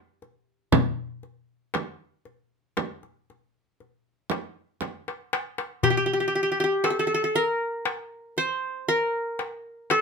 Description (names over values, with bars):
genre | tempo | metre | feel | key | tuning
Turkish makam ensemble | 118 BPM (eighths) | 10/8 | straight | unclear | A4 = 439 Hz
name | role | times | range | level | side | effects
qanun | melody | 0.0-10.0 s | G4 to C5 | -23 LUFS | equal | none
darbuka | percussion | 0.2-10.0 s | none | -27 LUFS | left 6 dB | none
frame drum | percussion | 0.7-5.0 s | none | -25 LUFS | right 7 dB | none
room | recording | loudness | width
moderate studio reverb, RT60 0.6 s | minimal, uncompressed stereo recording | -24 LUFS | side -5 dB against mid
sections
0.0-5.8 A section; 5.8-10.0 B section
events
drum fill 4.8-5.8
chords
none